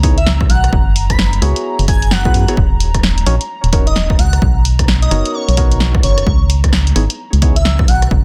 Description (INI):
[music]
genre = UK garage, two-step garage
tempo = 130 BPM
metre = 4/4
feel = swing 61% on 16ths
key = C# dorian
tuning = A4 = 442 Hz
[part]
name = airy breathy pad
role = sustained chords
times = 0.0-8.2 s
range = A#5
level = -32 LUFS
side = equal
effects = chorus, sidechain pumping
[part]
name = percussive organ stab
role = stabs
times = 0.0-7.6 s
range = B3 to C#5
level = -25 LUFS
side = equal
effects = chorus, phaser, digital delay
[part]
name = organ-like FM bass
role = bass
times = 0.0-8.2 s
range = D#1 to F#2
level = -16 LUFS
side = equal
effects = none
[part]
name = electronic kick drum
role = drums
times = 0.0-8.2 s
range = none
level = -17 LUFS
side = equal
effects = none
[part]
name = punchy analog drum machine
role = drums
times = 0.0-8.1 s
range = hi-hat, rim click, snare drum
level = -22 LUFS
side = equal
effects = none
[part]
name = airy dreamy lead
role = melody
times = 0.2-8.0 s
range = C#5 to B5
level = -24 LUFS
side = equal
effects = chorus, digital delay
[sound]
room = little or no reverb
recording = dense, heavily limited modern master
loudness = -13 LUFS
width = mono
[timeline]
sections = 0.0-8.2 A section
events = none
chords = 0.0 C#m9; 0.7 F#9sus4; 2.6 D#m7; 4.4 Bmaj7; 6.3 C#m9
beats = 0.27 | 0.73 1.19 1.65 2.11 | 2.57 3.03 3.50 3.96 | 4.42 4.88 5.34 5.80 | 6.26 6.73 7.19 7.65 | 8.11